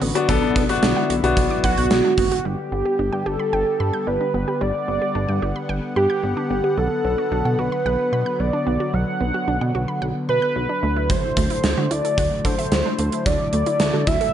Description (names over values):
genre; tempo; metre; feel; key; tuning
synth-pop; 111 BPM; 4/4; straight; unclear; A4 = 440 Hz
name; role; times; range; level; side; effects
warm analog pad; sustained chords; 0.0-14.3 s; D3 to F#5; -27 LUFS; left 1 dB; chorus
wide unison pluck; arpeggios; 0.0-14.3 s; F#3 to G6; -29 LUFS; right 3 dB; slapback echo
chorused synth bass; bass; 0.0-14.2 s; F#1 to D3; -24 LUFS; equal; none
gated 80s drum kit; drums; 0.0-2.4, 11.1-14.3 s; hi-hat, kick drum, snare drum; -22 LUFS; right 1 dB; none
clear grand piano; accompaniment; 0.2-2.1 s; B3 to A4; -21 LUFS; left 5 dB; none
warm velvety synth lead; melody; 1.6-14.3 s; F#4 to F#5; -22 LUFS; right 2 dB; chorus, slapback echo
room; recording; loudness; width
light reverb, small room ambience; nothing above 10.9 kHz; -18 LUFS; side -10 dB against mid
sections
0.0-2.5 A section; 2.5-14.3 B section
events
none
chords
0.0 Bm; 2.5 G; 6.8 Bm; 10.8 Dadd9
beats
| 0.29 0.83 1.37 1.91 | 2.45 2.99 3.53 4.07 | 4.61 5.15 5.69 6.24 | 6.78 7.32 7.86 8.40 | 8.94 9.48 10.02 10.56 | 11.10 11.64 12.18 12.72 | 13.26 13.80